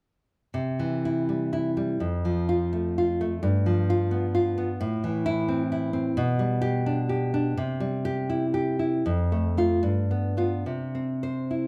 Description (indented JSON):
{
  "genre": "romantic piece for solo classical guitar",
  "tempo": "71-89 BPM",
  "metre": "2/4",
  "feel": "rubato",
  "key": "C major",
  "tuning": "A4 = 440 Hz",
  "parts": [
    { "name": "nylon-string guitar", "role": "solo", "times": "0.5-11.7 s", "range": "F2 to C5", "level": "-26 LUFS", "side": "equal", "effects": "none" }
  ],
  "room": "wet large studio reverb, RT60 1.0 s",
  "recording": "band playing live in one room",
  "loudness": "-26 LUFS",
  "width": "mono",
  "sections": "0.6-11.7 A section",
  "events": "none",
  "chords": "0.6 C; 2.0 F; 3.4 G7; 4.8 Am; 6.2 G/B; 7.6 C; 9.1 F; 9.8 G7; 10.7 C"
}